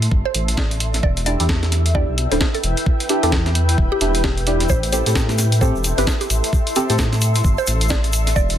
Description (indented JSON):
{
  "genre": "UK garage, two-step garage",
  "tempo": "131 BPM",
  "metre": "4/4",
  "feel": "swing 60% on 16ths",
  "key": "A minor",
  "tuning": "A4 = 440 Hz",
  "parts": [
    { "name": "dark detuned saw bass", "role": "bass", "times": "0.0-8.6 s", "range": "D1 to A2", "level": "-19 LUFS", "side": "equal", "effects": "none" },
    { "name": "breakbeat sampler-style drum kit", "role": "drums", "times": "0.0-8.6 s", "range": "hi-hat, snare drum", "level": "-23 LUFS", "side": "equal", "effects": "none" },
    { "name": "granular cloud pad", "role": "texture", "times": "0.0-8.6 s", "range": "E4 to C6", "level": "-26 LUFS", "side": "left 2 dB", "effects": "built-in reverb, sidechain pumping" },
    { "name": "electronic kick drum", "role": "drums", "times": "0.1-8.5 s", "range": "none", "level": "-19 LUFS", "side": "equal", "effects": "none" },
    { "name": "mallet-like synth pluck", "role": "melody", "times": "0.3-8.5 s", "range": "G4 to D5", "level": "-27 LUFS", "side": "right 1 dB", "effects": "chorus, phaser, tape echo" },
    { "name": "deep mellow chord stab", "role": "stabs", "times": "1.3-7.0 s", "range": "C4 to B4", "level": "-23 LUFS", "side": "right 1 dB", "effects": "chorus, phaser, ping-pong delay" },
    { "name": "tube shaker", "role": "percussion", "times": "4.7-8.6 s", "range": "none", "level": "-29 LUFS", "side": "left 2 dB", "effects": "none" }
  ],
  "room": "little or no reverb",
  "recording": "dense, heavily limited modern master",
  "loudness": "-16 LUFS",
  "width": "side -11 dB against mid",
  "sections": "0.0-8.6 A section",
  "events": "none",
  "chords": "0.0 Am; 1.0 Em7; 4.7 Am7"
}